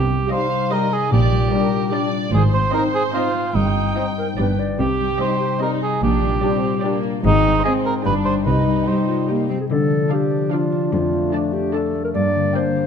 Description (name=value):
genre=cinematic, playful, whimsical film cue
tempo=147 BPM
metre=3/4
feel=straight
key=C minor, D minor from 9.7 s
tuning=A4 = 440 Hz
part: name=mellow cor anglais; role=second line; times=0.0-9.3 s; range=Eb4 to C5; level=-22 LUFS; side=right 4 dB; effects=none
part: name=concert harp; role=arpeggios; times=0.0-12.9 s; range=F2 to Eb5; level=-23 LUFS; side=left 9 dB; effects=none
part: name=muted studio cello section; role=bass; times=0.0-12.5 s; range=F2 to C4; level=-23 LUFS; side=right 2 dB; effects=none
part: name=muted studio double bass section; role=bass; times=0.0-8.8 s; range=G1 to C2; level=-22 LUFS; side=right 3 dB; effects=none
part: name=muted studio violin section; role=melody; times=0.3-12.9 s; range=D5 to A5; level=-34 LUFS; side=left 1 dB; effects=none
part: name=muted studio violin section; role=second line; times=0.3-12.9 s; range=Bb3 to G5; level=-27 LUFS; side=equal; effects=none
part: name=muted studio viola section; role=accompaniment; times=0.3-12.9 s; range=G3 to C5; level=-30 LUFS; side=right 2 dB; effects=none
part: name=clear French horn section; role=sustained chords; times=0.3-12.9 s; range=F3 to Eb4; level=-26 LUFS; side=left 2 dB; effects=none
part: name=dark clarinet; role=second line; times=4.0-4.8, 9.1-12.9 s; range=D4 to D5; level=-23 LUFS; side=right 1 dB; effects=none
room=moderate recital hall reverb, RT60 1.6 s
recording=none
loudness=-17 LUFS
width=side -7 dB against mid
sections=0.0-9.7 A section; 9.7-12.9 B section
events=none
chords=0.0 Cm; 1.1 Gm/Bb; 2.3 Ab; 3.6 Cm/G; 4.4 G; 4.8 Cm; 6.0 Gm/Bb; 7.2 Ab; 8.0 G; 8.5 Cm; 9.7 Dm; 10.9 Dm/F; 12.1 Gm